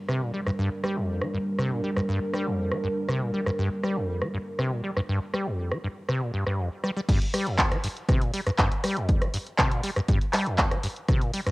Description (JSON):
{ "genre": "acid house", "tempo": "120 BPM", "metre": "4/4", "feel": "straight", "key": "G minor", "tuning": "A4 = 440 Hz", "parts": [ { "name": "dark analog pad", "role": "sustained chords", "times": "0.0-7.0 s", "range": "G3 to Bb4", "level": "-31 LUFS", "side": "right 1 dB", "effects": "chorus, sidechain pumping, cassette tape" }, { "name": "acid bass, saw", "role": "riff", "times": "0.1-11.5 s", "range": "F2 to G3", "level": "-28 LUFS", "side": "equal", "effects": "analog chorus, cassette tape, sidechain pumping" }, { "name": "punchy analog drum machine", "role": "drums", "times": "0.1-11.5 s", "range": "crash cymbal, handclaps, hi-hat, rim click", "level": "-28 LUFS", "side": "equal", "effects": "cassette tape" }, { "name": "electronic kick drum", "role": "drums", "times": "7.1-11.2 s", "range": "none", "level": "-24 LUFS", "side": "equal", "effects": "cassette tape" } ], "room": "light reverb, digital ambience", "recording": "home recording on cassette", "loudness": "-24 LUFS", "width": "side -21 dB against mid", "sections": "0.0-7.1 A section; 7.1-11.5 B section", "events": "drop 7.1-11.5", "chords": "0.0 Gm; 7.1 N.C." }